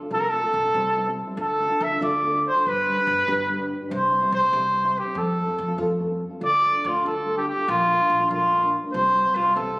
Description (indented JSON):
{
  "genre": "mexican folk, mariachi",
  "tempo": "95 BPM (dotted quarters)",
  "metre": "6/8",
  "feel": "straight",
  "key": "F major",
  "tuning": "A4 = 440 Hz",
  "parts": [
    { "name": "nylon-string guitar", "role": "accompaniment", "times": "0.0-9.8 s", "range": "Bb2 to C5", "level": "-30 LUFS", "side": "equal", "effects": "none" },
    { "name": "mellow trumpet", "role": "melody", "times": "0.1-9.8 s", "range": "F4 to E5", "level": "-20 LUFS", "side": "equal", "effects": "none" },
    { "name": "upright bass", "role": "bass", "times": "0.1-9.8 s", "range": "G1 to F2", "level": "-33 LUFS", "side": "equal", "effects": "none" }
  ],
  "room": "moderate recital hall reverb, RT60 1.7 s",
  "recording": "recorded on a phone in the room, studio reverb",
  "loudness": "-20 LUFS",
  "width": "side -24 dB against mid",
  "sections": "0.0-9.8 A section",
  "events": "none",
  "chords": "0.1 F/C; 0.7 C; 1.4 Dm; 2.6 G; 3.9 C; 5.2 F; 6.4 Dm; 7.7 Bb; 8.9 Csus4"
}